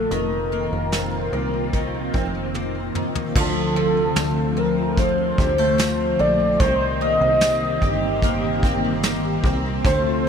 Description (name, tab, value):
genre	dream pop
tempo	74 BPM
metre	4/4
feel	straight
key	unclear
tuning	A4 = 445 Hz
part	warm velvety synth lead	melody	0.0-10.3 s	A4 to Eb5	-22 LUFS	equal	chorus, ping-pong delay
part	string machine, cellos	sustained chords	0.0-10.3 s	D3 to G4	-25 LUFS	equal	phaser, ensemble chorus
part	picked twelve-string acoustic guitar	arpeggios	0.0-10.3 s	Eb3 to G4	-26 LUFS	left 2 dB	wide subtle chorus, ping-pong delay
part	plucky analog bass	bass	0.0-10.3 s	F1 to D2	-27 LUFS	equal	none
part	soft brush drum kit	drums	0.1-10.0 s	crash cymbal, hi-hat, kick drum, snare drum, tambourine, toms	-23 LUFS	equal	none
room	light reverb, studio reverb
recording	none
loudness	-18 LUFS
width	side -7 dB against mid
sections	0.0-3.4 A section; 3.4-10.3 B section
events	drum fill 2.5-3.4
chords	0.1 F7sus4; 3.4 Dm7; 6.6 Cm7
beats	| 0.11 0.92 1.73 2.54 | 3.35 4.17 4.98 5.79 | 6.60 7.41 8.22 9.03 | 9.84